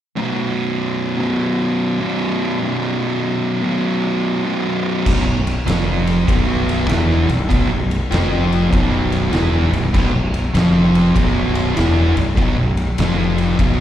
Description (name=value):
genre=stoner and doom metal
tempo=98 BPM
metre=4/4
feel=swing 66% on 8ths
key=unclear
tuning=A4 = 439 Hz
part: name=thick fuzz guitar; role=riff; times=0.2-13.8 s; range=B1 to E#3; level=-17 LUFS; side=equal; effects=distortion
part: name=fuzz fingered electric bass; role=bass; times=5.1-13.8 s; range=B0 to E#1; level=-19 LUFS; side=equal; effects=overdrive, tube saturation
part: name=oversized low-tuned drum kit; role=drums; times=5.1-13.8 s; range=crash cymbal, kick drum, ride cymbal, snare drum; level=-21 LUFS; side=equal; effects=none
room=light reverb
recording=live gig heard through the venue's PA, recital hall reverb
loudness=-15 LUFS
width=side -11 dB against mid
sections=0.2-5.1 A section; 5.1-13.8 B section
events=none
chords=0.2 B5; 5.1 N.C.